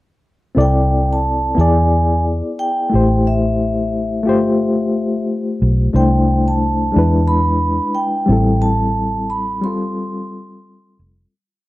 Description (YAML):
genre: lush 1970s-style soul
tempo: 89 BPM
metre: 4/4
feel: swing 58% on 16ths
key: C major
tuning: A4 = 441 Hz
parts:
  - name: bright reed electric piano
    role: accompaniment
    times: 0.5-11.3 s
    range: G3 to D5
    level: -18 LUFS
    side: left 2 dB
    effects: overdrive, fast tremolo
  - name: vibraphone with soft mallets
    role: melody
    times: 0.6-10.9 s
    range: E5 to C6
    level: -21 LUFS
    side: right 2 dB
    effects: none
  - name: vintage muted fingered electric bass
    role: bass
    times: 0.6-11.2 s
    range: F1 to E2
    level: -17 LUFS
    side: equal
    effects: none
room: small room ambience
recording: dry, close 1970s-style studio recording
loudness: -14 LUFS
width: side -18 dB against mid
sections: 0.6-11.3 verse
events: fade-out 8.6-11.3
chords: 0.6 C69; 1.6 E7; 2.9 Am7; 4.3 G9sus4; 5.9 C69; 7.0 E7; 8.3 Am7; 9.6 G9sus4